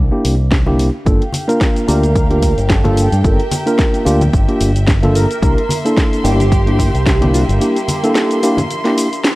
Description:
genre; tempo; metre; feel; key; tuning
nu-disco, nu disco; 110 BPM; 4/4; swing 55% on 16ths; G dorian; A4 = 437 Hz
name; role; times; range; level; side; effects
fingered electric bass with an envelope filter; bass; 0.0-7.6 s; G1 to G2; -15 LUFS; equal; transformer saturation
tine electric piano; accompaniment; 0.1-9.1 s; Bb3 to Bb4; -17 LUFS; equal; sidechain pumping
house drum kit; drums; 0.2-9.4 s; hi-hat, shaker, snare drum; -21 LUFS; equal; overdrive, studio reverb
electronic kick drum; drums; 0.5-7.2 s; none; -15 LUFS; equal; overdrive, studio reverb
congas; percussion; 0.7-8.7 s; none; -23 LUFS; left 1 dB; none
rich studio violin section; sustained chords; 1.1-9.4 s; Bb3 to C6; -25 LUFS; equal; sidechain pumping
wide unison lead; melody; 1.9-9.2 s; G4 to Bb4; -22 LUFS; right 1 dB; lush chorus, tape echo
room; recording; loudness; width
little or no reverb; dry, gritty hardware recording; -11 LUFS; side -19 dB against mid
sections
0.0-9.4 A section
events
break 7.6-9.4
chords
0.0 C7; 1.1 Gm7; 5.4 C7

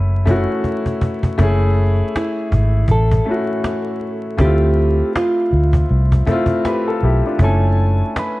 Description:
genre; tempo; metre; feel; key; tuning
lo-fi hip hop; 80 BPM; 4/4; swing 58% on 16ths; unclear; A4 = 440 Hz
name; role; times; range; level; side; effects
mellow electric guitar; melody; 0.0-8.4 s; E4 to B4; -22 LUFS; right 2 dB; phaser, low-pass filter
clear upright piano; accompaniment; 0.0-8.4 s; A3 to G#5; -20 LUFS; left 2 dB; cassette tape, low-pass filter
vintage muted fingered electric bass; bass; 0.0-8.0 s; F#1 to D2; -15 LUFS; equal; none
cajon; drums; 0.3-8.4 s; none; -20 LUFS; equal; none
room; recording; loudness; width
light reverb, studio reverb; dark, warm production, vinyl crackle, nothing above 10.7 kHz; -14 LUFS; side -19 dB against mid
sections
0.0-1.4 A section; 1.4-8.4 B section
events
drum fill 0.6-1.4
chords
0.0 F#m7; 4.4 Dm7; 7.4 F#m7

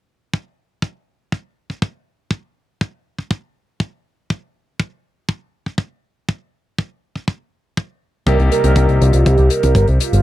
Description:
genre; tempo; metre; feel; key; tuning
italo disco; 121 BPM; 4/4; straight; unclear; A4 = 440 Hz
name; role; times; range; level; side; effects
kick drum; drums; 0.3-9.9 s; none; -19 LUFS; equal; high-pass filter on kick, high-pass filter on snare, high-pass filter on room
mellow synth brass; melody; 8.3-10.2 s; F4 to Bb4; -18 LUFS; right 4 dB; chorus, tape echo
bright concert grand piano; stabs; 8.3-10.2 s; C3 to G4; -20 LUFS; left 5 dB; none
picked electric bass with an envelope filter; bass; 8.3-10.2 s; G1 to C2; -13 LUFS; equal; none
hi-hat; drums; 8.3-10.2 s; none; -28 LUFS; left 7 dB; none
room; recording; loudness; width
little or no reverb; dry, close 1970s-style studio recording; -17 LUFS; side -14 dB against mid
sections
0.3-10.2 A section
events
none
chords
0.3 N.C.; 8.3 Eb/C

